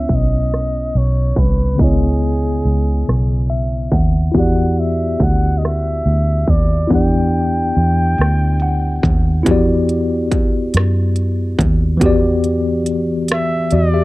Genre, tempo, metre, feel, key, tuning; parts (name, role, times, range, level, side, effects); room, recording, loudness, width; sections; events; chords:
slow six-eight R&B; 47 BPM (dotted quarters); 6/8; straight; A4 = 444 Hz
breathy flugelhorn; melody; 0.0-9.0, 13.3-14.0 s; G#4 to G5; -23 LUFS; equal; tape echo
mellow tine electric piano; accompaniment; 0.0-14.0 s; C#3 to F#5; -19 LUFS; left 2 dB; medium stereo tremolo
vintage muted fingered electric bass; bass; 0.0-14.0 s; B1 to F#2; -16 LUFS; equal
industrial drum kit; drums; 0.1-13.9 s; hi-hat, kick drum, rim click; -18 LUFS; equal; distortion
little or no reverb; dry, close 1970s-style studio recording, low-pass filter; -13 LUFS; side -19 dB against mid
0.0-9.5 A section; 9.5-14.0 B section
filter sweep 0.0-9.5; tine electric piano fill 3.1-4.4, 8.2-9.5; kick muted 13.3-14.0
0.0 C#m9; 4.4 Em9